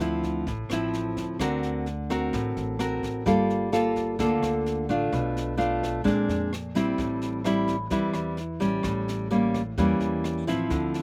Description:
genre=bossa nova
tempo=129 BPM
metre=4/4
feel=straight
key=unclear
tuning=A4 = 440 Hz
part: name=nylon-string guitar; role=accompaniment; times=0.0-11.0 s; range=A2 to Bb4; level=-27 LUFS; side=equal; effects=none
part: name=upright bass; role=bass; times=0.0-11.0 s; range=G1 to F2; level=-36 LUFS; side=equal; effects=none
part: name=jazz brush drum kit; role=drums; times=0.0-11.0 s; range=kick drum, rim click, snare drum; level=-39 LUFS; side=equal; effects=none
room=little or no reverb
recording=recorded outdoors, with no room sound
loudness=-27 LUFS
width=mono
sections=0.0-11.0 A section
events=none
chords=0.0 Dm9; 1.4 D7b13; 3.3 Gm9; 5.1 Bm7b5; 6.0 Bb9; 7.0 Am7; 8.8 A7b9

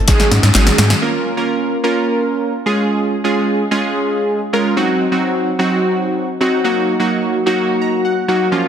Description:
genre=dance-pop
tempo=128 BPM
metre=4/4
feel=straight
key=Bb minor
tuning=A4 = 441 Hz
part: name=soft round pluck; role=arpeggios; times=0.0-1.0 s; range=Eb3 to Db4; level=-27 LUFS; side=left 4 dB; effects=chorus, sidechain pumping, tape echo
part: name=glassy digital keys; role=accompaniment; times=0.1-8.7 s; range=F3 to Bb5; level=-15 LUFS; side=right 1 dB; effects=chorus, sidechain pumping
part: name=round analog bass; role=bass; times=0.1-0.9 s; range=Ab1 to Ab2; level=-14 LUFS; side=equal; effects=sidechain pumping
part: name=deep house drum kit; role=drums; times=0.1-1.0 s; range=hi-hat, kick drum, snare drum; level=-14 LUFS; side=equal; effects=overdrive
part: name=group handclap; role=percussion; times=0.5-0.7 s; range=none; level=barely audible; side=none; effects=none
room=moderate lush hall reverb, RT60 1.6 s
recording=dense, heavily limited modern master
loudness=-13 LUFS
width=side -8 dB against mid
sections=0.0-1.0 A section; 1.0-8.7 B section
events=drum fill 0.1-1.0; synth keys fill 7.6-8.5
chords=0.1 Ab7sus4; 1.0 Bbm; 2.7 Db; 4.8 Cdim; 6.6 Ebm

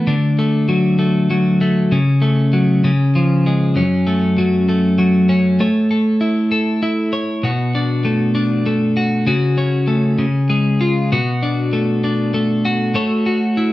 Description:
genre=pop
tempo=65 BPM (dotted quarters)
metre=6/8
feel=straight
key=F# minor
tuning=A4 = 437 Hz
part: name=twelve-string electric guitar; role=solo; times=0.0-13.7 s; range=F#2 to C#5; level=-14 LUFS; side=equal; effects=none
room=wet stone room reverb, RT60 0.9 s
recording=band playing live in one room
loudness=-14 LUFS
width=side -16 dB against mid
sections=0.0-3.8 A section; 3.8-13.7 B section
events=none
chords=0.1 D; 1.9 F#m/C#; 2.8 C#; 3.8 F#m; 5.6 A; 7.4 Bm7; 9.3 F#m/C#; 10.2 C#; 11.1 Bm7; 13.0 A6

